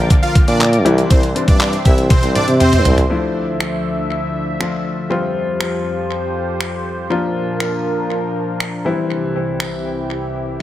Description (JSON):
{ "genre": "dance-pop", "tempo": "120 BPM", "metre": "4/4", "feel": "straight", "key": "D minor", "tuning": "A4 = 439 Hz", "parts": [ { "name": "clear concert grand piano", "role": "accompaniment", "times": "0.0-10.6 s", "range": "C3 to G4", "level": "-21 LUFS", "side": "left 3 dB", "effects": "sidechain pumping, tape echo" }, { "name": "sweeping resonant pad", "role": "sustained chords", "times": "0.0-10.6 s", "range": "C2 to D6", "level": "-24 LUFS", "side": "right 1 dB", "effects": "wide subtle chorus, sidechain pumping" }, { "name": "clear tuba", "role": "bass", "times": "0.0-3.0 s", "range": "Bb1 to C3", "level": "-16 LUFS", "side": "equal", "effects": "sidechain pumping" }, { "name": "detuned 8-bit digital drum machine", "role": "drums", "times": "0.1-9.7 s", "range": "finger snaps, handclaps, hi-hat, kick drum, toms", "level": "-16 LUFS", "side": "equal", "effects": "none" }, { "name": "supersaw chords", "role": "melody", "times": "0.2-3.0 s", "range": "C4 to F5", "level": "-22 LUFS", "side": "right 1 dB", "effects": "sidechain pumping, tape echo" } ], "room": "light reverb, digital ambience", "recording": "echo-heavy mix", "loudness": "-15 LUFS", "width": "side -13 dB against mid", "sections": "0.0-3.1 A section; 3.1-10.6 B section", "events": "drop 0.0-3.1; drum fill 2.1-3.1", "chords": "0.0 Bb; 0.9 C; 3.1 Dmadd9; 5.1 Fsus2; 7.1 Bb; 8.9 C" }